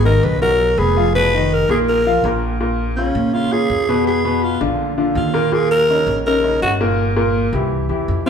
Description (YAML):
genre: jazz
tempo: 164 BPM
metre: 4/4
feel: straight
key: unclear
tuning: A4 = 439 Hz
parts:
  - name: growling alto saxophone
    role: melody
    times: 0.0-8.3 s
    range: Db4 to Cb5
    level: -18 LUFS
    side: equal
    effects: none
  - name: clear baby grand piano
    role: accompaniment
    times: 0.0-8.3 s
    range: Bb2 to Cb6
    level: -18 LUFS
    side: left 2 dB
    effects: none
  - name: upright bass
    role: bass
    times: 0.0-8.3 s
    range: F1 to Bb2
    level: -21 LUFS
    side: right 1 dB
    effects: none
room: wet large studio reverb, RT60 1.1 s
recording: band playing live in one room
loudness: -14 LUFS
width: side -7 dB against mid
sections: 0.0-2.6 A section; 2.6-8.3 B section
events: alto saxophone solo 2.6-8.3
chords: 0.0 Abm7; 1.1 Abm69/F (rootless); 1.9 Bb5; 2.6 Bbm7; 4.1 Fdim; 4.8 Bb; 5.5 Eb5; 7.0 Gm6; 7.7 C